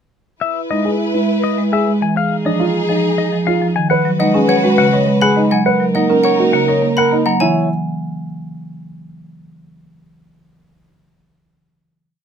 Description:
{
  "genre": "classical, minimalist pattern music",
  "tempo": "103 BPM",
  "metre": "3/4",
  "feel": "straight",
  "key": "C# dorian",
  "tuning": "A4 = 440 Hz",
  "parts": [
    { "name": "clean electric guitar", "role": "melody", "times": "0.4-7.7 s", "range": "C#5 to A#5", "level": "-20 LUFS", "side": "left 9 dB", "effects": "none" },
    { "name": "mellow French horn", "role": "second line", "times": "0.4-7.2 s", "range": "E4 to B4", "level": "-21 LUFS", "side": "right 2 dB", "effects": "none" },
    { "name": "clear symphonic string section", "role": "sustained chords", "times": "0.4-7.2 s", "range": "Eb4 to B4", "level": "-23 LUFS", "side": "left 3 dB", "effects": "none" },
    { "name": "marimba with medium mallets", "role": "accompaniment", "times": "0.7-7.7 s", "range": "C#3 to C#4", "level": "-18 LUFS", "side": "right 1 dB", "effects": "none" },
    { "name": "dark baby grand piano", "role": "arpeggios", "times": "0.7-7.7 s", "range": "D4 to C#5", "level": "-18 LUFS", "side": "right 1 dB", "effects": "none" },
    { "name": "xylophone with plastic mallets", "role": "arpeggios", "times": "4.2-7.7 s", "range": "F#5 to B5", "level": "-22 LUFS", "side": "right 2 dB", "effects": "none" }
  ],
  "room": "light reverb",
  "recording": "none",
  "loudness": "-13 LUFS",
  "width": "side -8 dB against mid",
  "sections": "0.4-7.4 A section; 7.4-9.2 final chord",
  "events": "none",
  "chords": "0.4 Emaj7; 2.2 Fm7; 3.9 G#m7; 5.7 Bmaj7; 7.4 C#m (rootless)"
}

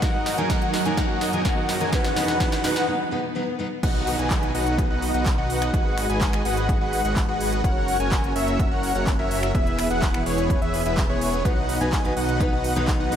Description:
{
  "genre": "EDM, festival progressive house",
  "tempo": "126 BPM",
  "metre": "4/4",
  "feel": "straight",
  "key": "unclear",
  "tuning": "A4 = 440 Hz",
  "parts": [
    { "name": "fingerpicked steel-string acoustic guitar", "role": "accompaniment", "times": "0.0-3.7, 11.4-13.2 s", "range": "G#2 to B4", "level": "-29 LUFS", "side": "left 1 dB", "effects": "vintage 12-bit sampler grit, sidechain pumping, analog delay" },
    { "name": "lush unison pad", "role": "sustained chords", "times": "0.0-13.2 s", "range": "E2 to C#5", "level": "-31 LUFS", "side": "right 1 dB", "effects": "chorus, sidechain pumping" },
    { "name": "wide unison lead", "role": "arpeggios", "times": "0.0-13.2 s", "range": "C#5 to G#5", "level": "-28 LUFS", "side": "left 2 dB", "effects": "sidechain pumping, analog delay" },
    { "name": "dense compressed supersaw", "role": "riff", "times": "0.0-13.2 s", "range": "B3 to G#5", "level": "-27 LUFS", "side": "equal", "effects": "cassette tape, sidechain pumping, analog delay" },
    { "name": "big-room dance drum kit", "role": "drums", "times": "0.0-13.2 s", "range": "crash cymbal, finger snaps, handclaps, hi-hat, snare drum", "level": "-31 LUFS", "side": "right 1 dB", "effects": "high-pass filter on hats, high-pass filter on snare, high-pass filter on cymbals, high-pass filter on room" },
    { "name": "electronic kick drum", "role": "drums", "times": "0.0-13.0 s", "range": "none", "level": "-24 LUFS", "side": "equal", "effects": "none" },
    { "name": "riser, swell and downlifter", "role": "sound effects", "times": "0.8-7.6 s", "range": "none", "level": "-35 LUFS", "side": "equal", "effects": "none" },
    { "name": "wide detuned saw bass", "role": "bass", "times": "3.8-13.2 s", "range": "E1 to B1", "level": "-28 LUFS", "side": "equal", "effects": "chorus, sidechain pumping" }
  ],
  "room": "moderate plate reverb, RT60 2.1 s",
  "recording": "dreamy mix soaked in reverb",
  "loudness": "-20 LUFS",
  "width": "side -9 dB against mid",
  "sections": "0.0-3.8 A section; 3.8-13.2 B section",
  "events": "build-up 0.0-3.8; drum fill 0.0-2.9; break 2.9-3.8; swell 2.9-3.8; drop 3.8-13.2",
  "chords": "0.0 F#; 1.9 E; 3.8 B; 5.7 G#m7; 7.6 F#; 9.5 E; 11.5 B"
}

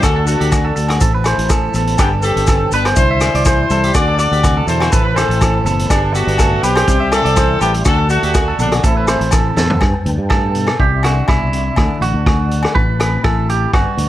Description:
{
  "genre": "highlife guitar band",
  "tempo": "123 BPM",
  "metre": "4/4",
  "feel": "straight",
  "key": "G major",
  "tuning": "A4 = 444 Hz",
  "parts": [
    { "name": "warm horn section", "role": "melody", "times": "0.0-9.3 s", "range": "F#3 to D5", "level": "-18 LUFS", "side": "left 1 dB", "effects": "none" },
    { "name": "mellow electric guitar", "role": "accompaniment", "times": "0.0-14.1 s", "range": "G2 to G4", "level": "-23 LUFS", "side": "left 5 dB", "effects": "none" },
    { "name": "percussive tonewheel organ", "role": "sustained chords", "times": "0.0-14.1 s", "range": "B4 to C6", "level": "-28 LUFS", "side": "equal", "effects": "slow rotary speaker, chorus vibrato" },
    { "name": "clean electric guitar", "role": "arpeggios", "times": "0.0-14.1 s", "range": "E4 to E5", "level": "-20 LUFS", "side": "right 5 dB", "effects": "none" },
    { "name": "fingered electric bass", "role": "bass", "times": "0.0-14.1 s", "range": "F#1 to G2", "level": "-18 LUFS", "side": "equal", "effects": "none" },
    { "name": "vintage drum kit", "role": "drums", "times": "0.0-14.1 s", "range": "hi-hat, kick drum, rim click, snare drum, toms", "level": "-17 LUFS", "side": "equal", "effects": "none" },
    { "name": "agogo bells", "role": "percussion", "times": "0.0-13.9 s", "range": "none", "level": "-25 LUFS", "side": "left 4 dB", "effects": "none" },
    { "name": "maracas", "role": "percussion", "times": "0.0-9.7 s", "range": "none", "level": "-27 LUFS", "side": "left 4 dB", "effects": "none" }
  ],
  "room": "small room reverb",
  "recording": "none",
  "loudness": "-12 LUFS",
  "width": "side -13 dB against mid",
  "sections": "0.0-9.8 A section; 9.8-14.1 B section",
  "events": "drum fill 9.6; clean electric guitar solo 9.8-14.1",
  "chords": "0.0 D; 1.0 Amadd9; 2.0 Gadd9; 3.0 Cadd9; 3.9 D; 4.9 Amadd9; 5.9 Gadd9; 6.9 Cadd9; 7.9 D; 8.8 Amadd9; 9.8 Gadd9; 10.8 Cadd9; 11.8 D; 12.8 Amadd9"
}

